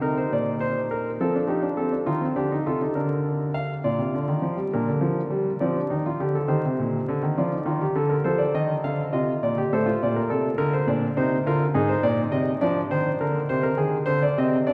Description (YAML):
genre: classical, baroque-style 3-part fugue for grand piano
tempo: 68 BPM (dotted quarters)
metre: 12/8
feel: straight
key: unclear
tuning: A4 = 436 Hz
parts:
  - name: warm baby grand piano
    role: solo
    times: 0.0-14.7 s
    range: Ab2 to F5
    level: -24 LUFS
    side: equal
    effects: none
room: wet cathedral reverb, RT60 4.3 s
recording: recorded in a church or concert hall, vinyl crackle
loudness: -24 LUFS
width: mono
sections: 0.0-4.7 A section; 4.7-14.7 B section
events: none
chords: 0.0 Cm7; 1.2 F7; 3.0 Bb/D; 4.7 Gm/Bb; 8.3 F; 10.0 Bb; 11.7 Fm/Ab (rootless)